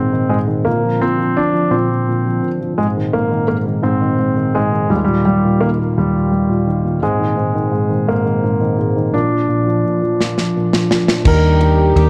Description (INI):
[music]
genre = six-eight pop ballad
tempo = 57 BPM (dotted quarters)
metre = 6/8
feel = straight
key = Eb major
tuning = A4 = 440 Hz
[part]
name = warm concert grand piano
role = melody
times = 0.0-12.1 s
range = G3 to Bb4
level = -20 LUFS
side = equal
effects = none
[part]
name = dark upright piano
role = accompaniment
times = 0.0-12.1 s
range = Eb2 to G4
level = -20 LUFS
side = equal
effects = none
[part]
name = mellow tonewheel organ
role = sustained chords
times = 0.0-12.1 s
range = Bb2 to F4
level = -24 LUFS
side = equal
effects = slow rotary speaker
[part]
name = modern studio drum kit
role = drums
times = 10.2-12.1 s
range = crash cymbal, kick drum, ride cymbal, snare drum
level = -20 LUFS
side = equal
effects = none
[part]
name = warm French horn section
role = second line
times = 11.3-12.1 s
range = G4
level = -23 LUFS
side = equal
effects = none
[part]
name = vintage muted fingered electric bass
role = bass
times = 11.3-12.1 s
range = Eb2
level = -15 LUFS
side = equal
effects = none
[sound]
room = moderate plate reverb, RT60 1.7 s, small room reverb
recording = dark, warm production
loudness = -16 LUFS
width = mono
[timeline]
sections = 0.0-11.2 A section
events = drum fill 10.2-11.2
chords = 0.0 Abadd9; 0.7 Bbadd9; 2.8 Abadd9; 4.9 Ebadd9; 7.0 Abadd9; 9.1 Bb; 11.2 Ebmaj7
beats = | 0.66 1.72 | 2.78 3.84 | 4.90 5.96 | 7.02 8.08 | 9.13 10.19 | 11.25